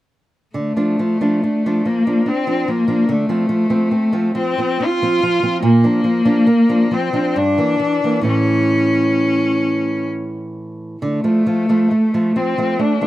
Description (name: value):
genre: romantic duo for cello and classical guitar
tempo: 64-74 BPM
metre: 3/4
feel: rubato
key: D minor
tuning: A4 = 440 Hz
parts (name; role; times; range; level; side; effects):
- nylon-string guitar; accompaniment; 0.5-13.1 s; G2 to D4; -19 LUFS; right 2 dB; none
- clear cello; melody; 0.6-13.1 s; A3 to F4; -16 LUFS; left 2 dB; none
room: light reverb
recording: recorded outdoors, with no room sound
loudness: -14 LUFS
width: side -15 dB against mid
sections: 0.6-13.1 A section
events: none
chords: 0.6 Dm; 3.1 F/D; 5.6 Bb; 7.4 Edim/G; 8.3 A; 11.0 Dm (rootless)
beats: | 0.56 1.44 2.28 | 3.10 3.93 4.82 | 5.64 6.48 7.37 | 8.28 9.19 10.11 | 11.03 11.92 12.81